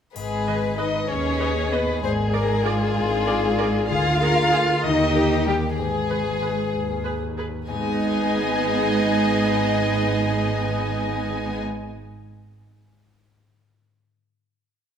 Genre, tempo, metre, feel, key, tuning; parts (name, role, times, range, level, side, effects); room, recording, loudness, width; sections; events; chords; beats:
cinematic, playful, whimsical film cue; 64 BPM (dotted quarters); 6/8; straight; G# minor; A4 = 443 Hz
mellow French horn section; sustained chords; 0.1-11.6 s; G4 to D#5; -30 LUFS; left 3 dB
rich chamber violin section; melody; 0.2-11.6 s; G4 to G#5; -26 LUFS; left 3 dB
warm chamber violin section; second line; 0.2-11.6 s; E#4 to D#5; -28 LUFS; left 2 dB
concert harp; arpeggios; 0.2-11.9 s; G#2 to G#5; -32 LUFS; left 6 dB
rich chamber double bass section; bass; 0.2-11.6 s; G#1 to D#2; -27 LUFS; right 3 dB
warm chamber cello section; bass; 0.2-11.6 s; G3 to E#4; -27 LUFS; right 1 dB
triangle; percussion; 0.2-1.4 s; -45 LUFS; left 5 dB
clear chamber viola section; accompaniment; 0.5-11.6 s; B3 to D#5; -29 LUFS; right 5 dB
moderate scoring stage reverb, RT60 1.7 s; -20 LUFS; side -8 dB against mid
0.2-7.7 A section; 7.7-11.4 final chord
0.2 G#m; 2.0 A#7/G#; 3.9 A#7/D; 4.8 D#; 5.8 G#m
| 0.16 1.10 | 2.03 2.96 | 3.90 4.84 | 5.79 6.74 | 7.68 8.63 | 9.57 10.51